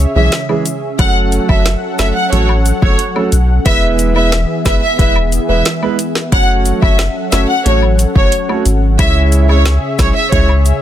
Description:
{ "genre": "dancehall", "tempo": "90 BPM", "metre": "4/4", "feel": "straight", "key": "F# minor", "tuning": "A4 = 438 Hz", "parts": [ { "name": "warm analog pad", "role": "sustained chords", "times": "0.0-10.8 s", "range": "C#3 to F#5", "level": "-21 LUFS", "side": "left 1 dB", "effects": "chorus, sidechain pumping" }, { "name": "punchy sub bass", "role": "bass", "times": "0.0-10.7 s", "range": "E1 to C#2", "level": "-13 LUFS", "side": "equal", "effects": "none" }, { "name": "warm studio violin section", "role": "melody", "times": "0.2-10.4 s", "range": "C#5 to F#5", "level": "-17 LUFS", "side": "left 1 dB", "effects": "ping-pong delay" }, { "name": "warm concert grand piano", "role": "accompaniment", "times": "0.2-10.5 s", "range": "E3 to C#5", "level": "-19 LUFS", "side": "right 5 dB", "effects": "sidechain pumping" }, { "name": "afro-pop drum kit", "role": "drums", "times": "0.3-10.8 s", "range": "hi-hat, kick drum, snare drum", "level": "-14 LUFS", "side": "equal", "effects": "overdrive" }, { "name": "woodblock and cabasa", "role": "percussion", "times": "0.5-10.8 s", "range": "none", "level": "-26 LUFS", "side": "left 6 dB", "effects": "none" } ], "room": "small room ambience", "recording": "dense, heavily limited modern master", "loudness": "-10 LUFS", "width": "side -11 dB against mid", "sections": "0.0-10.8 A section", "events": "none", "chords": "0.0 C#m; 1.0 F#m; 3.7 E; 6.3 F#m; 9.0 C#m" }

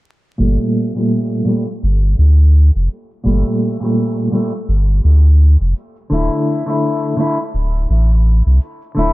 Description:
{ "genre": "trip hop", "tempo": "84 BPM", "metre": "4/4", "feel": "swing 58% on 16ths", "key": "G dorian", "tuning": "A4 = 441 Hz", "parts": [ { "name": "mellow electric guitar", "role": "accompaniment", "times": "0.4-9.1 s", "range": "Bb2 to E4", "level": "-17 LUFS", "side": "equal", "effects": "harmonic tremolo, low-pass filter, tape echo" }, { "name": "warm sub bass", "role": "bass", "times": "0.4-9.1 s", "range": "D1 to D2", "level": "-10 LUFS", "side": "equal", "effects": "tube saturation" }, { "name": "tube shaker", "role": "percussion", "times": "0.4-9.1 s", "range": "none", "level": "-49 LUFS", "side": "right 3 dB", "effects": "none" } ], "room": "small room ambience", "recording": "dark, warm production, vinyl crackle, low-pass filter", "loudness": "-12 LUFS", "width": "side -19 dB against mid", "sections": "0.4-9.1 A section", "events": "filter sweep on clean electric guitar 0.4-9.1; filter sweep 0.4-9.1", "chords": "0.4 Gmadd9; 6.1 Dsus2" }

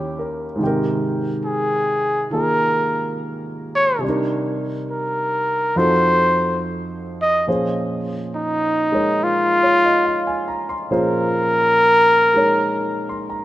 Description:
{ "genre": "jazz ballad", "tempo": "70 BPM", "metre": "4/4", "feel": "swing 68% on 8ths", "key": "Bb minor", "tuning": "A4 = 440 Hz", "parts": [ { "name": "breathy trumpet", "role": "melody", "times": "0.0-13.4 s", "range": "Eb4 to Eb5", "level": "-17 LUFS", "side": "equal", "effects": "none" }, { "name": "warm grand piano", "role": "accompaniment", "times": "0.0-13.4 s", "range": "Eb2 to C6", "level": "-22 LUFS", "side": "right 1 dB", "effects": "none" } ], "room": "moderate lush hall reverb, RT60 2.5 s", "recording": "rough home demo mix", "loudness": "-16 LUFS", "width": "side -14 dB against mid", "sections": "0.0-13.4 A section", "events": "none", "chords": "0.0 Eb7b9; 0.6 Abmaj9; 4.0 Cm7; 5.8 F7b9; 7.5 Bbm9" }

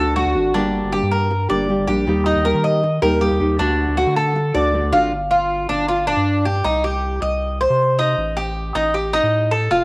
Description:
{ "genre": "latin", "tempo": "157 BPM", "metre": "4/4", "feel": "straight", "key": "unclear", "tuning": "A4 = 440 Hz", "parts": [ { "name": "nylon-string guitar", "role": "accompaniment", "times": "0.0-5.1 s", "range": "D3 to G4", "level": "-23 LUFS", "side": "equal", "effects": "none" }, { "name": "Cuban tres", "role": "arpeggios", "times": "0.0-9.8 s", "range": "D4 to Eb5", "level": "-21 LUFS", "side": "equal", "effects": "none" }, { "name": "round analog bass", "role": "bass", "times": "0.0-9.8 s", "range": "F1 to Eb3", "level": "-26 LUFS", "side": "equal", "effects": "none" } ], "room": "moderate plate reverb, RT60 2.3 s", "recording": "none", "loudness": "-19 LUFS", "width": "mono", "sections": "0.0-5.1 A section; 5.1-9.8 B section", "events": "none", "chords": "0.0 D; 0.5 Gm; 2.1 Eb; 3.6 D; 5.1 G5; 6.6 Cm; 8.2 Gsus2/A" }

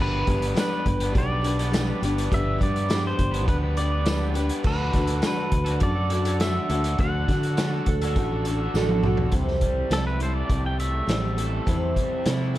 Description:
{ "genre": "folk rock and heartland rock", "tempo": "103 BPM", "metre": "4/4", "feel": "straight", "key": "G major", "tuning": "A4 = 438 Hz", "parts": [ { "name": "pedal steel guitar", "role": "melody", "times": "0.0-12.5 s", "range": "A4 to G5", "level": "-30 LUFS", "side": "right 1 dB", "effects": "none" }, { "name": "picked steel-string acoustic guitar", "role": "accompaniment", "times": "0.0-12.6 s", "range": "C3 to B4", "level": "-30 LUFS", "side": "left 3 dB", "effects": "none" }, { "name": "tonewheel organ", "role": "sustained chords", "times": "0.0-12.6 s", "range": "A4 to E6", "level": "-43 LUFS", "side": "right 1 dB", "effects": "none" }, { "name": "raw garage guitar", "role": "riff", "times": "0.0-12.6 s", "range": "C3 to B4", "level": "-32 LUFS", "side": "right 2 dB", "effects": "overdrive" }, { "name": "fingered electric bass", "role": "bass", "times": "0.0-12.6 s", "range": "G1 to D3", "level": "-26 LUFS", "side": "equal", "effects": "none" }, { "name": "vintage drum kit", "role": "drums", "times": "0.3-12.6 s", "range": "crash cymbal, hi-hat, kick drum, snare drum, toms", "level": "-26 LUFS", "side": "equal", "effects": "none" }, { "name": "tambourine", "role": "percussion", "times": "0.6-8.9 s", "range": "none", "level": "-43 LUFS", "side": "right 10 dB", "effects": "none" }, { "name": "clean lap steel guitar", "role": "second line", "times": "7.9-9.2 s", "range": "A4", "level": "-31 LUFS", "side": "right 9 dB", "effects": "slapback echo" } ], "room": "studio reverb", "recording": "dark, warm production", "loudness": "-21 LUFS", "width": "side -14 dB against mid", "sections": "0.0-9.3 A section; 9.3-12.6 B section", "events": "drum fill 8.8-9.3; pedal steel guitar solo 9.3-12.6", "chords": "0.0 G; 4.7 D; 9.3 C6" }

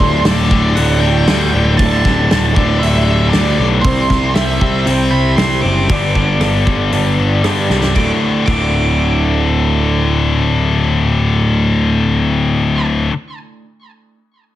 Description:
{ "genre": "quiet-loud alternative rock", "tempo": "117 BPM", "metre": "4/4", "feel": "straight", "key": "D mixolydian", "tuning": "A4 = 442 Hz", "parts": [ { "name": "octave-fuzz lead guitar", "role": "melody", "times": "0.0-12.9 s", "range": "C5 to D6", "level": "-21 LUFS", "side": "right 4 dB", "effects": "distortion" }, { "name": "electric guitar through a small old amp", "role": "arpeggios", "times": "0.0-13.1 s", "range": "D2 to C5", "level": "-20 LUFS", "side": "right 2 dB", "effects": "analog chorus, digital delay" }, { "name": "scooped high-gain guitar", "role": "riff", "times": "0.0-13.1 s", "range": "D2 to C4", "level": "-16 LUFS", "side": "left 4 dB", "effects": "distortion" }, { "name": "fuzz picked electric bass", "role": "bass", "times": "0.0-13.1 s", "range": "D1 to G2", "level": "-16 LUFS", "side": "equal", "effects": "overdrive" }, { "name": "loose indie drum kit", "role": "drums", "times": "0.0-8.6 s", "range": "hi-hat, kick drum, ride cymbal, rim click, snare drum", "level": "-18 LUFS", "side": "equal", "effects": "none" } ], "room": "moderate large studio reverb, RT60 1.0 s, small room ambience", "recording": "heavily compressed radio sound", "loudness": "-11 LUFS", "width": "side -13 dB against mid", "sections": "0.0-8.0 A section; 8.0-12.1 B section", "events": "drum fill 7.7", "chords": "0.0 Dsus4; 3.8 C; 5.9 G; 8.0 D" }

